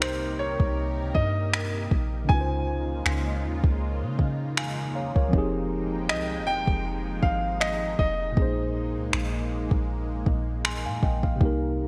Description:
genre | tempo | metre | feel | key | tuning
contemporary R&B | 79 BPM | 4/4 | swing 54% on 16ths | unclear | A4 = 440 Hz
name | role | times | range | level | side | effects
warm baby grand piano | melody | 0.0-9.5 s | C5 to Ab5 | -33 LUFS | equal | delay
mellow tine electric piano | accompaniment | 0.0-11.9 s | Bb2 to C6 | -34 LUFS | equal | none
lush unison pad | sustained chords | 0.0-11.9 s | C3 to G5 | -38 LUFS | equal | chorus, phaser
soft 808-style bass | bass | 0.0-11.9 s | F1 to Db3 | -32 LUFS | equal | none
smooth R&B drum kit | drums | 0.0-11.6 s | finger snaps, kick drum | -28 LUFS | equal | overdrive, vintage 12-bit sampler grit, gated reverb
room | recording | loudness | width
light reverb, digital ambience | bright 1980s-style digital production | -26 LUFS | mono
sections
0.0-11.9 A section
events
break 0.0-11.4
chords
0.0 Cm7; 2.3 Dbmaj7; 5.3 Fm9; 8.4 Bb9sus4

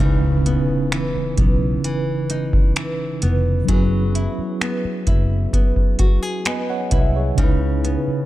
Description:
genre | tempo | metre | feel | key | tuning
contemporary R&B | 65 BPM | 4/4 | straight | C# minor | A4 = 440 Hz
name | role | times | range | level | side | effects
mellow tine electric piano | accompaniment | 0.0-8.3 s | C#3 to G#5 | -23 LUFS | right 1 dB | fast stereo tremolo
nylon-string guitar | arpeggios | 0.0-8.3 s | C#3 to G#4 | -25 LUFS | equal | none
vintage muted fingered electric bass | bass | 0.0-8.1 s | E#1 to C#2 | -20 LUFS | equal | none
impact | sound effects | 0.0-3.7 s | none | -31 LUFS | equal | none
booming analog drum machine | drums | 0.5-8.1 s | finger snaps, hi-hat, kick drum | -18 LUFS | equal | none
room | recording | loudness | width
little or no reverb | dark, warm production | -17 LUFS | side -15 dB against mid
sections
0.0-8.3 A section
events
impact 0.0-3.7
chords
0.0 C#m9; 3.7 F#9sus4; 7.4 C#m9

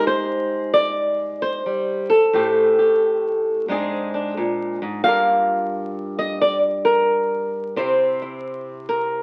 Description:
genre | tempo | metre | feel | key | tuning
solo jazz | 88 BPM | 4/4 | swing 66% on 8ths | unclear | A4 = 442 Hz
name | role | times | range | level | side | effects
flamenco guitar | solo | 0.0-9.2 s | G2 to F5 | -21 LUFS | equal | none
room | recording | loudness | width
wet studio reverb, RT60 0.8 s | very old 78 rpm record, vinyl crackle | -20 LUFS | mono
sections
0.0-9.2 A section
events
none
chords
0.0 Abmaj7; 2.3 Am7; 3.7 Ab; 5.0 Gm7; 7.8 C7

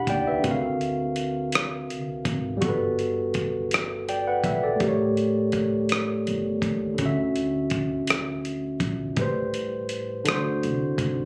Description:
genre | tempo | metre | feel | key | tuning
slow six-eight R&B | 55 BPM (dotted quarters) | 6/8 | straight | unclear | A4 = 438 Hz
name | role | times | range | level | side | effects
barky tine electric piano | accompaniment | 0.0-11.3 s | A2 to B5 | -27 LUFS | equal | overdrive
upright bass | bass | 0.0-11.3 s | G1 to D#2 | -35 LUFS | equal | none
dusty soul sampler-style drum kit | drums | 0.1-11.2 s | hi-hat, kick drum, rim click | -30 LUFS | equal | none
room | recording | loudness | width
light reverb | recorded on a phone in the room, club reverb | -26 LUFS | mono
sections
0.0-11.3 A section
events
none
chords
0.4 D7alt; 2.6 Gmaj9; 4.8 A7b9; 7.0 Dmaj9; 9.2 Am9; 10.3 D7

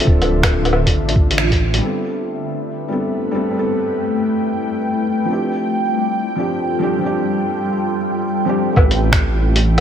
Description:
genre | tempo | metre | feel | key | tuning
future garage | 138 BPM | 4/4 | swing 64% on 16ths | A minor | A4 = 440 Hz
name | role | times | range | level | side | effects
felt-muted upright piano | accompaniment | 0.0-9.8 s | F3 to B4 | -22 LUFS | right 1 dB | vintage 12-bit sampler grit, sidechain pumping, dub echo
ethereal airy pad | sustained chords | 0.0-9.8 s | D3 to G5 | -20 LUFS | left 1 dB | ensemble chorus, built-in reverb, phaser, sidechain pumping
lo-fi sampler-style drum kit | drums | 0.0-1.8, 8.8-9.8 s | finger snaps, hi-hat, woodblock | -19 LUFS | left 1 dB | none
dark detuned saw bass | bass | 0.1-1.8, 8.8-9.8 s | D1 to A1 | -18 LUFS | equal | sidechain pumping
electronic kick drum | drums | 0.1-1.6, 8.8-9.2 s | none | -15 LUFS | equal | none
room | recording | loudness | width
moderate scoring stage reverb, RT60 1.8 s, digital ambience | none | -16 LUFS | side -9 dB against mid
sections
0.0-1.8 A section; 1.8-8.8 B section; 8.8-9.8 C section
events
band accent 1.4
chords
0.0 Dm7; 1.8 Am9; 5.3 G7sus4; 8.8 Am9

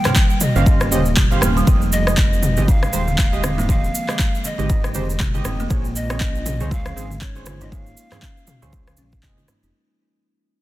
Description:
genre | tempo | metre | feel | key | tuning
afro house | 119 BPM | 4/4 | swing 58% on 16ths | unclear | A4 = 437 Hz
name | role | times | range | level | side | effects
breathy reedy large pan pipes | melody | 0.0-9.2 s | Db5 to G5 | -29 LUFS | left 1 dB | tape echo
cabasa | percussion | 0.0-9.7 s | none | -29 LUFS | right 4 dB | none
deep mellow chord stab | stabs | 0.1-9.4 s | Ab3 to F5 | -27 LUFS | right 4 dB | chorus, sidechain pumping, tape echo
deep house drum kit | drums | 0.1-9.6 s | handclaps, rim click, toms | -24 LUFS | left 1 dB | none
congas | percussion | 0.1-9.6 s | none | -28 LUFS | right 3 dB | none
buzzing kalimba | arpeggios | 0.2-9.7 s | C3 to F4 | -27 LUFS | right 2 dB | sidechain pumping, tape echo
electronic kick drum | drums | 0.2-9.3 s | none | -18 LUFS | equal | none
dark detuned saw bass | bass | 0.6-9.7 s | Eb1 to Db2 | -23 LUFS | equal | sidechain pumping
room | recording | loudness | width
studio ambience | dense, heavily limited modern master | -16 LUFS | side -16 dB against mid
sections
0.0-9.7 A section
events
drop 0.0-9.7; fade-out 1.7-9.7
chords
0.0 Eb13; 1.7 Fm9; 5.7 Bbm9

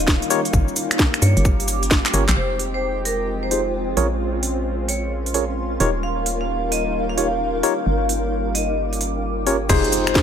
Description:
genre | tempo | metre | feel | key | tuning
UK garage, two-step garage | 131 BPM | 4/4 | swing 65% on 16ths | F minor | A4 = 440 Hz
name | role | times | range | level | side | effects
warm analog pad | sustained chords | 0.0-10.2 s | G3 to G5 | -29 LUFS | equal | chorus, sidechain pumping
hollow knocking FM bass | bass | 0.0-9.8 s | Eb1 to G2 | -24 LUFS | equal | none
granular cloud pad | texture | 0.0-10.2 s | Eb4 to D6 | -26 LUFS | equal | built-in reverb, sidechain pumping
electronic kick drum | drums | 0.1-2.0, 9.7-10.2 s | none | -20 LUFS | equal | none
garage drum kit | drums | 0.1-10.2 s | cabasa, crash cymbal, finger snaps, handclaps, hi-hat, snare drum | -22 LUFS | right 1 dB | none
tine electric piano | stabs | 0.3-10.2 s | Db4 to Db5 | -24 LUFS | left 1 dB | medium stereo tremolo, low-pass filter, tape echo
vibraphone with medium hard mallets | melody | 1.2-10.2 s | Ab4 to F5 | -28 LUFS | equal | tape echo
impact | sound effects | 9.7-10.2 s | none | -26 LUFS | equal | none
room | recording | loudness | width
light reverb | none | -18 LUFS | side -8 dB against mid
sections
0.0-2.4 A section; 2.4-9.7 B section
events
drum fill 2.0-2.4; band accent 2.3; filter sweep on tine electric piano 2.4-9.7; impact 9.7-10.2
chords
0.0 Eb9; 0.5 Gm7b5; 2.4 Fm9; 4.0 Bbm7; 5.8 Eb9; 7.9 Gm7b5; 9.7 Fm9

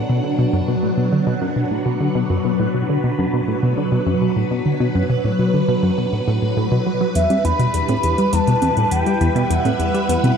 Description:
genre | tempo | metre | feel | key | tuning
ambient, sequencer-driven space music | 102 BPM | 4/4 | straight | B minor | A4 = 442 Hz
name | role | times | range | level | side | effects
phased string machine | sustained chords | 0.0-10.4 s | F#3 to F#5 | -21 LUFS | equal | ensemble chorus, phaser
tight sequenced synth | riff | 0.0-10.3 s | E2 to G3 | -19 LUFS | equal | chorus, tape echo
expressive synth lead | melody | 7.2-10.4 s | E5 to B5 | -21 LUFS | left 1 dB | lush chorus, tape echo
electronic hi-hat and congas | percussion | 7.2-10.4 s | none | -26 LUFS | right 2 dB | overdrive
room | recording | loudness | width
moderate plate reverb, RT60 2.9 s | dark, warm production | -16 LUFS | side -7 dB against mid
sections
0.0-10.4 A section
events
none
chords
0.0 Bm; 7.2 Em

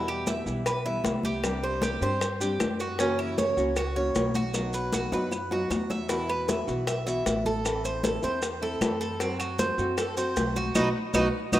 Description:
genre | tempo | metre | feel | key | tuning
latin, Cuban son and guajira | 154 BPM | 4/4 | straight | E minor | A4 = 440 Hz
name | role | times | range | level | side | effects
nylon-string guitar | accompaniment | 0.0-11.6 s | B2 to G4 | -32 LUFS | left 1 dB | none
Cuban tres | arpeggios | 0.0-11.6 s | C4 to E5 | -29 LUFS | right 2 dB | none
upright bass | bass | 0.0-11.6 s | A1 to G2 | -35 LUFS | right 1 dB | none
claves | percussion | 0.1-11.6 s | none | -39 LUFS | right 2 dB | none
congas | percussion | 0.1-11.6 s | none | -33 LUFS | left 1 dB | none
bongos | percussion | 0.3-11.6 s | none | -33 LUFS | left 3 dB | none
maracas | percussion | 0.3-11.6 s | none | -38 LUFS | right 2 dB | none
room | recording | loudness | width
moderate plate reverb, RT60 2.6 s | rough home demo mix | -25 LUFS | side -13 dB against mid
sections
0.0-11.6 A section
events
drum fill 4.5-6.1, 11.1-11.6; band accent 10.8-11.6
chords
0.0 Em; 1.4 Csus2; 3.0 F#7; 4.5 B; 6.1 Esus2; 7.7 Am; 9.2 F#dim; 10.8 B

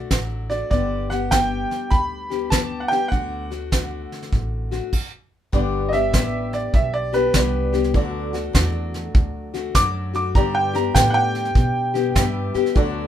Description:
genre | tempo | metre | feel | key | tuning
honky-tonk and classic country | 100 BPM | 4/4 | swing 66% on 8ths | G major | A4 = 440 Hz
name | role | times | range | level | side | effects
bright upright piano | melody | 0.0-12.3 s | B4 to D6 | -23 LUFS | right 2 dB | none
picked acoustic archtop guitar | accompaniment | 0.0-13.1 s | G2 to G4 | -26 LUFS | left 9 dB | none
upright bass | bass | 0.1-13.1 s | G1 to B2 | -26 LUFS | equal | none
soft brush drum kit | drums | 0.1-12.9 s | crash cymbal, hi-hat, kick drum, snare drum | -20 LUFS | equal | none
honky-tonk upright piano | accompaniment | 5.5-13.1 s | F#4 to E5 | -32 LUFS | right 7 dB | none
room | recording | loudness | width
moderate studio reverb, RT60 0.5 s | minimal, uncompressed stereo recording | -19 LUFS | side -10 dB against mid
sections
0.0-5.5 A section; 5.5-13.1 B section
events
stop 4.9-5.5; upright piano solo 5.5-13.1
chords
0.0 D; 0.7 G; 3.1 D; 5.5 G; 7.9 D; 10.3 G

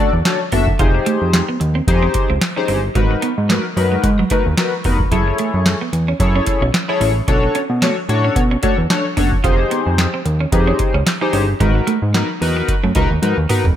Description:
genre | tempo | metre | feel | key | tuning
early-eighties boogie funk | 111 BPM | 4/4 | swing 56% on 16ths | unclear | A4 = 440 Hz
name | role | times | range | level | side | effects
chorused polysynth | accompaniment | 0.0-13.6 s | D4 to E5 | -19 LUFS | left 3 dB | none
clean electric guitar | riff | 0.0-13.6 s | F#3 to F4 | -24 LUFS | right 6 dB | wide subtle chorus
fat analog bass | bass | 0.1-13.7 s | F1 to B2 | -18 LUFS | equal | none
booming analog drum machine | drums | 0.3-13.8 s | handclaps, hi-hat, kick drum, snare drum, toms | -19 LUFS | equal | none
room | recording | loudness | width
light reverb | bright 1980s-style digital production | -14 LUFS | side -10 dB against mid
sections
0.0-13.8 A section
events
drum fill 13.2-13.8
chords
0.0 Bm9; 0.8 Fm9; 3.0 G#m9; 5.1 F#m9; 7.3 Bm9; 9.4 Fm9; 11.6 G#m9

